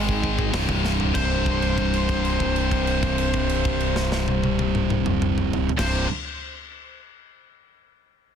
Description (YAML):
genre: heavy metal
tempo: 96 BPM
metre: 4/4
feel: straight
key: C minor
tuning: A4 = 439 Hz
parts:
  - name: high-gain lead guitar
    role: melody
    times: 0.0-6.0 s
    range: C5 to Eb5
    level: -29 LUFS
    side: equal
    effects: distortion, digital delay
  - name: distorted electric guitar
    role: riff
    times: 0.0-6.1 s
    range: C2 to Ab3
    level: -27 LUFS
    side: left 14 dB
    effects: overdrive
  - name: high-gain distorted guitar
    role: riff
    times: 0.0-6.1 s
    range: C2 to Ab3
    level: -27 LUFS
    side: right 12 dB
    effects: distortion
  - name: growling picked electric bass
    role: bass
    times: 0.0-6.0 s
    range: C1 to Ab1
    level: -26 LUFS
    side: equal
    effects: overdrive
  - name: tight metal drum kit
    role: drums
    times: 0.1-5.9 s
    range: crash cymbal, hi-hat, kick drum, snare drum, toms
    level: -27 LUFS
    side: equal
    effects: soft clipping on snare
room: studio ambience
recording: dense, heavily limited modern master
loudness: -20 LUFS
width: side -8 dB against mid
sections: 0.0-1.1 A section; 1.1-6.2 B section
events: slowing down 0.0-1.1; drum fill 0.8-1.1; held note 1.1-5.8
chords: 0.0 Ab5; 0.5 C5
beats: 0.53 | 1.15 1.77 2.40 3.03 | 3.65 4.28 4.91 5.53